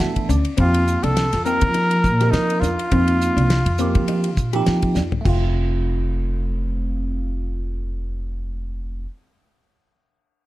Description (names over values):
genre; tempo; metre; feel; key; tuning
electric jazz fusion; 103 BPM; 4/4; swing 56% on 16ths; F mixolydian; A4 = 440 Hz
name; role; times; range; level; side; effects
mellow trumpet; melody; 0.0-4.7 s; Eb4 to Bb4; -22 LUFS; equal; plate reverb
bell-like tine electric piano; accompaniment; 0.0-9.1 s; E3 to E5; -26 LUFS; right 4 dB; phaser
mellow electric guitar; stabs; 0.0-5.4 s; C4 to G4; -26 LUFS; left 4 dB; analog chorus
upright bass; bass; 0.0-9.0 s; F1 to F3; -21 LUFS; equal; none
damped 70s drum kit; drums; 0.0-5.4 s; crash cymbal, hi-hat, kick drum, ride cymbal, snare drum, toms; -25 LUFS; equal; none
room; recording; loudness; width
light reverb; dark, warm production; -18 LUFS; side -16 dB against mid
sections
0.0-5.3 A section; 5.3-7.6 B section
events
tine electric piano fill 0.0-0.6; drum fill 5.0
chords
0.0 E9sus4; 0.6 F9sus4; 5.3 F